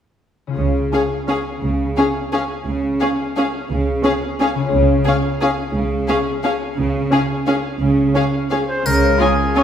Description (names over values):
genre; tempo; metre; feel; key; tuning
classical, orchestral ballroom waltz; 174 BPM; 3/4; uneven beats, rubato; Db major; A4 = 440 Hz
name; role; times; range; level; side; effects
concert harp; arpeggios; 0.5-9.6 s; Db3 to Db5; -23 LUFS; left 5 dB; none
rich symphonic cello section; bass; 0.6-9.1 s; Db3; -21 LUFS; right 2 dB; none
warm symphonic double bass section; bass; 0.6-9.1 s; Db2; -23 LUFS; right 2 dB; none
warm symphonic violin section; melody; 0.9-9.6 s; F5 to Ab5; -28 LUFS; left 5 dB; none
warm symphonic violin section; second line; 0.9-9.6 s; F4 to Ab4; -24 LUFS; left 3 dB; none
dark symphonic viola section; accompaniment; 0.9-9.6 s; Db4; -22 LUFS; equal; none
clear oboe; second line; 8.7-9.6 s; Ab4 to Db5; -18 LUFS; equal; none
triangle; percussion; 8.9-9.5 s; none; -29 LUFS; left 1 dB; none
room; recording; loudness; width
wet scoring stage reverb, RT60 1.7 s; heard from further back in the room; -16 LUFS; side -9 dB against mid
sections
0.6-8.9 A section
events
none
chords
0.6 Db